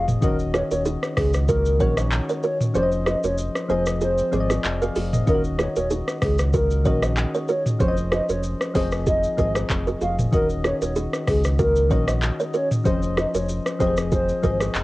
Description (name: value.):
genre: afrobeats.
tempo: 95 BPM.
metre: 4/4.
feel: swing 55% on 16ths.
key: unclear.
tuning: A4 = 440 Hz.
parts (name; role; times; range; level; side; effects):
hollow clarinet-like synth lead; melody; 0.0-14.6 s; Ab4 to F5; -25 LUFS; equal; chorus, cassette tape.
soft electric-piano-like synth keys; accompaniment; 0.0-14.8 s; Eb3 to F5; -27 LUFS; left 2 dB; chorus, cassette tape.
sub bass with octave; bass; 0.0-14.8 s; Eb1 to Db2; -25 LUFS; equal; none.
afro-pop drum kit; drums; 0.1-14.8 s; handclaps, hi-hat, kick drum, rim click, shaker, toms; -24 LUFS; equal; overdrive, vintage 12-bit sampler grit, cassette tape.
kalimba; riff; 0.5-14.7 s; Eb4 to Eb5; -28 LUFS; right 3 dB; cassette tape, tape echo.
room: little or no reverb.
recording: home recording on cassette.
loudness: -19 LUFS.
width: side -19 dB against mid.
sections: 0.0-14.8 A section.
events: kick muted 2.7-5.3.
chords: 0.2 Ebm7; 2.7 Dbmaj7/F; 3.7 Fm7; 5.3 Ebm7; 7.8 Dbmaj7/F; 8.7 Fm7; 10.3 Ebm7; 12.9 Dbmaj7/F; 13.8 Fm7.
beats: | 0.22 0.85 1.49 2.12 | 2.75 3.38 4.01 4.64 | 5.27 5.91 6.54 7.17 | 7.80 8.43 9.06 9.70 | 10.33 10.96 11.59 12.22 | 12.85 13.48 14.12 14.75.